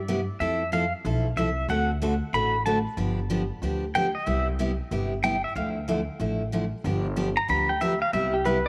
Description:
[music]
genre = country, western swing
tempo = 186 BPM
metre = 4/4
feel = swing 64% on 8ths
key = C major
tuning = A4 = 436 Hz
[part]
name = upright bass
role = bass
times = 0.0-8.6 s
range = G1 to G2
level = -32 LUFS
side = equal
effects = none
[part]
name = picked steel-string acoustic guitar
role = accompaniment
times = 0.1-8.6 s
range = C3 to A4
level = -30 LUFS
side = equal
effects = none
[part]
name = pedal steel guitar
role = melody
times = 0.4-8.7 s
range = G4 to B5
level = -29 LUFS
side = equal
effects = none
[sound]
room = light reverb, small room ambience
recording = none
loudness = -26 LUFS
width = mono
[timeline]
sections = 0.0-8.7 A section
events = pedal steel guitar solo 0.0-8.7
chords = 0.4 Fmaj7; 1.7 D7; 3.0 G7; 4.3 Cmaj7; 5.6 Dmadd9; 6.8 G7; 8.1 Cmaj7

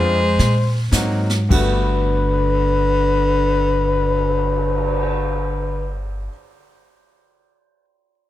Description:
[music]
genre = jazz, small-group swing and bop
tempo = 98-125 BPM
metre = 3/4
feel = swing 65% on 8ths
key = G major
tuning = A4 = 437 Hz
[part]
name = breathy trumpet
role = melody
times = 0.0-5.9 s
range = B4 to C5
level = -20 LUFS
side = left 5 dB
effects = none
[part]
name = breathy baritone saxophone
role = second line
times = 0.0-6.0 s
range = D3 to Ab3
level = -23 LUFS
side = right 3 dB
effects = none
[part]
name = clear grand piano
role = accompaniment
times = 0.0-6.3 s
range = G2 to Gb4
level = -26 LUFS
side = equal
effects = none
[part]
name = upright bass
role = bass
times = 0.0-6.3 s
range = G1 to Bb2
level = -21 LUFS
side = equal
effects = none
[part]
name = jazz brush drum kit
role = drums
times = 0.4-5.0 s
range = crash cymbal, cymbal swell, hi-hat, kick drum, snare drum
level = -25 LUFS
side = right 2 dB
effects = none
[sound]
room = light reverb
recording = none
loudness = -16 LUFS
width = side -13 dB against mid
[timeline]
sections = 0.0-1.5 A section; 1.5-5.2 B section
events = slowing down 0.0-1.5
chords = 0.0 Bb7; 0.9 Ab9; 1.5 Gmaj9

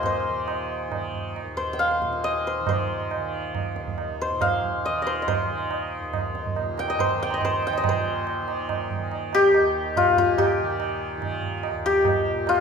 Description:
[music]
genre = indian classical, Hindustani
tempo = 140 BPM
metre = 3/4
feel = straight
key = Eb raga bhupali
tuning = A4 = 440 Hz
[part]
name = santur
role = melody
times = 0.0-12.6 s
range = F4 to G5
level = -24 LUFS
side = left 2 dB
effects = none
[part]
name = tanpura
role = drone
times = 0.0-12.6 s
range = Eb2 to Eb3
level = -32 LUFS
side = right 1 dB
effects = none
[part]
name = tabla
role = percussion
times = 0.0-12.6 s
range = none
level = -28 LUFS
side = right 6 dB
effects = none
[sound]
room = wet recital hall reverb, RT60 1.4 s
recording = minimal, uncompressed stereo recording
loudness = -22 LUFS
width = side -6 dB against mid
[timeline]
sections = 0.0-7.8 A section; 7.8-12.6 B section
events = speeding up 0.0-12.6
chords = none

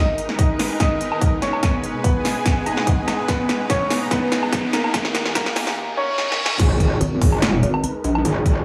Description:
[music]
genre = heavy wobble dubstep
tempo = 145 BPM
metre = 4/4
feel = half-time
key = G# minor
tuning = A4 = 441 Hz
[part]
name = clear baby grand piano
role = melody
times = 0.0-6.5 s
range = A#3 to D#5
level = -27 LUFS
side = equal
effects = dub echo
[part]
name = supersaw pad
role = sustained chords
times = 0.0-8.6 s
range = D#3 to A#5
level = -31 LUFS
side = equal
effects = sidechain pumping, low-pass filter
[part]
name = riser, reverse cymbal and impact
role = sound effects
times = 0.0-8.2 s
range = none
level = -33 LUFS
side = equal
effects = none
[part]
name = granular cloud pad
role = texture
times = 0.0-5.8 s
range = G#3 to B5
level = -32 LUFS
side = equal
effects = built-in reverb, sidechain pumping
[part]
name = big-room dance drum kit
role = drums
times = 0.2-8.5 s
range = crash cymbal, hi-hat, snare drum, woodblock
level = -26 LUFS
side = equal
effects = high-pass filter on hats, high-pass filter on snare, high-pass filter on perc, high-pass filter on cymbals, high-pass filter on room
[part]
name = electronic kick drum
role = drums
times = 0.4-8.5 s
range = none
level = -23 LUFS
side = equal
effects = none
[part]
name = metallic wobble bass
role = bass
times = 6.6-8.6 s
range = G#1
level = -22 LUFS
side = equal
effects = distortion, chorus, overdrive
[part]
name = pulsing pluck wobble bass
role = bass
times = 7.0-8.2 s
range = G#1 to A#1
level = -22 LUFS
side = equal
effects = chorus, overdrive
[sound]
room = moderate digital room reverb, RT60 1.1 s, digital ambience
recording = high-pass filter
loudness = -20 LUFS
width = mono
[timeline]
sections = 0.0-6.6 A section; 6.6-8.6 B section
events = build-up 0.0-6.6; drum fill 0.0-5.8, 6.2-6.6; filter sweep 0.0-6.6; reverse cymbal 5.8-6.6; drop 6.6-8.6; impact 6.6-8.2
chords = 0.0 G#madd9; 1.6 G#madd11; 3.3 G#madd9; 4.9 D#; 6.6 G#madd9

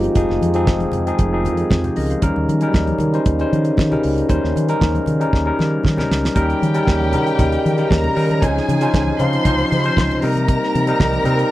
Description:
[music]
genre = disco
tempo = 116 BPM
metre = 4/4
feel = straight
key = unclear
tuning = A4 = 439 Hz
[part]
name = barky tine electric piano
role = accompaniment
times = 0.0-11.5 s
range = F3 to F5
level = -20 LUFS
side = left 2 dB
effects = phaser
[part]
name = mellow French horn section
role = sustained chords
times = 0.0-11.5 s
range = C3 to F4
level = -24 LUFS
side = right 1 dB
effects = none
[part]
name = fingered electric bass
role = bass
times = 0.0-11.4 s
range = F1 to Eb3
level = -20 LUFS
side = right 1 dB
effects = none
[part]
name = damped 70s drum kit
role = drums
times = 0.0-11.5 s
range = hi-hat, kick drum, snare drum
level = -19 LUFS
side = right 1 dB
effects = none
[part]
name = congas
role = percussion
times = 0.3-11.4 s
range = none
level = -27 LUFS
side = left 3 dB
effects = none
[part]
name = warm studio violin section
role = second line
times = 6.4-11.5 s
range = G4 to C6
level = -22 LUFS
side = equal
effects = none
[sound]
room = little or no reverb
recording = dry, close 1970s-style studio recording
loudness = -15 LUFS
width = side -15 dB against mid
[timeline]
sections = 0.0-6.4 A section; 6.4-11.5 B section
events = drum fill 5.3-6.4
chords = 0.0 Fm7; 2.2 Eb7; 8.4 Dbmaj9; 10.2 Cm7

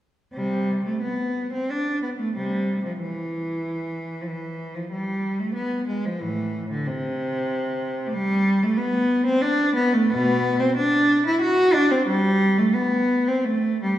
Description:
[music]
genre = classical, baroque-style suite movement for unaccompanied cello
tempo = 92 BPM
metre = 3/4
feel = uneven beats, rubato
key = C major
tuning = A4 = 438 Hz
[part]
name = rich cello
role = solo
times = 0.3-14.0 s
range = A2 to F#4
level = -20 LUFS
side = equal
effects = none
[sound]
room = wet recital hall reverb, RT60 1.8 s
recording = heard from further back in the room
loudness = -20 LUFS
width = side -12 dB against mid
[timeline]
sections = 0.3-14.0 A section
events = none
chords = none

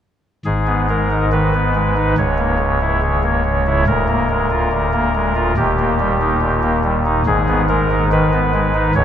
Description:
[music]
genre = classical, chorale-style piece for pipe organ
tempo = 71 BPM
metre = 4/4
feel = straight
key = G# minor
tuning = A4 = 441 Hz
[part]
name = chamber organ, soft reed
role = solo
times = 0.5-9.0 s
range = C#1 to C#5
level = -14 LUFS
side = equal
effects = none
[sound]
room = wet cathedral reverb, RT60 4.9 s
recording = none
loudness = -14 LUFS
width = side -9 dB against mid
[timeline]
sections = 0.5-9.0 A section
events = none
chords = 0.5 G#m; 2.2 A#dim/C#; 3.9 A#7/D; 5.6 D#; 7.3 G#m

